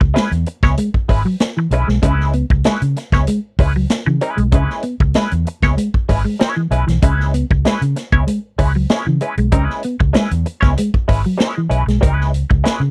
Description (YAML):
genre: funk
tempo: 96 BPM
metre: 4/4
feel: straight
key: C# minor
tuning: A4 = 440 Hz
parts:
  - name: semi-hollow electric guitar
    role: accompaniment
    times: 0.0-12.8 s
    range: G#3 to C#5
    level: -23 LUFS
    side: equal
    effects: wah
  - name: vintage muted fingered electric bass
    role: bass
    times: 0.0-12.9 s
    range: G#1 to C#3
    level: -19 LUFS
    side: equal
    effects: none
  - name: vintage drum kit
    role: drums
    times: 0.0-12.8 s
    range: hi-hat, kick drum, snare drum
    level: -20 LUFS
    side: equal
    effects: none
  - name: mellow electric guitar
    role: riff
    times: 0.2-12.0 s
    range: E3 to C#4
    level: -22 LUFS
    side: equal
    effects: subtle chorus
room: little or no reverb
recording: dry, close 1970s-style studio recording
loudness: -16 LUFS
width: mono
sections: 0.0-12.9 A section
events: none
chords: 0.0 C#m7